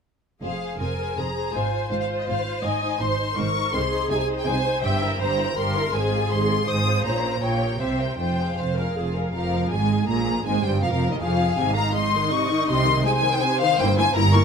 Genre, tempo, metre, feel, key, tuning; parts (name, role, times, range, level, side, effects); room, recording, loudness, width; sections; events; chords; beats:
quick classical-period movement for string orchestra; 162 BPM; 3/4; straight; F minor; A4 = 441 Hz
warm symphonic violin section; melody; 0.4-14.4 s; Eb5 to Eb6; -26 LUFS; left 4 dB
warm symphonic violin section; second line; 0.4-14.4 s; Db4 to F5; -30 LUFS; left 3 dB
warm symphonic viola section; accompaniment; 0.4-14.4 s; C3 to E5; -26 LUFS; right 2 dB
rich symphonic cello section; bass; 0.4-14.4 s; Eb2 to C3; -27 LUFS; right 2 dB
warm symphonic double bass section; bass; 0.4-14.4 s; F1 to C2; -28 LUFS; right 2 dB
moderate recital hall reverb, RT60 1.7 s; close, detailed microphones; -20 LUFS; side -6 dB against mid
0.4-9.3 A section; 9.3-14.4 B section
0.4 Fm; 1.5 Fm/Ab; 2.6 Ab; 3.7 Ab/C; 4.8 C7/G; 5.9 Fm/Ab; 7.1 Bbm; 7.4 Gdim/Bb; 7.8 C7; 8.2 Fm; 11.6 Ab; 12.7 Ab/C; 13.8 C7/G
| 0.43 0.80 1.17 | 1.54 1.91 2.28 | 2.64 3.01 3.38 | 3.74 4.11 4.47 | 4.84 5.20 5.57 | 5.94 6.31 6.68 | 7.05 7.43 7.80 | 8.19 8.57 8.96 | 9.34 9.72 10.09 | 10.46 10.83 11.21 | 11.58 11.95 12.32 | 12.69 13.06 13.43 | 13.79 14.16